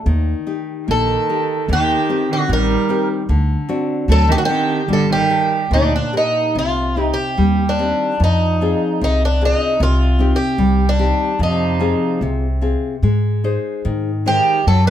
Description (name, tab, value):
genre	fado-style ballad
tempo	74 BPM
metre	2/4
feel	rubato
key	G harmonic minor, C minor from 6.6 s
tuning	A4 = 441 Hz
part	nylon-string guitar	accompaniment	0.0-14.9 s	Bb2 to F#5	-21 LUFS	left 2 dB	none
part	upright bass	bass	0.1-14.9 s	G1 to Ab2	-18 LUFS	equal	none
part	picked twelve-string acoustic guitar	melody	0.9-14.9 s	D4 to Bb4	-18 LUFS	right 1 dB	plate reverb
part	rich cello	second line	0.9-6.3, 11.4-14.9 s	Bb2 to G3	-23 LUFS	right 6 dB	none
room	light reverb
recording	none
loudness	-15 LUFS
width	side -10 dB against mid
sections	0.0-6.6 A section; 6.6-14.9 B section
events	none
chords	0.1 Eb; 1.7 Cm/Eb; 3.3 D7; 4.9 Gmadd9; 6.6 Cm; 8.2 Fm; 9.8 Cm; 11.4 Fm; 13.0 Ab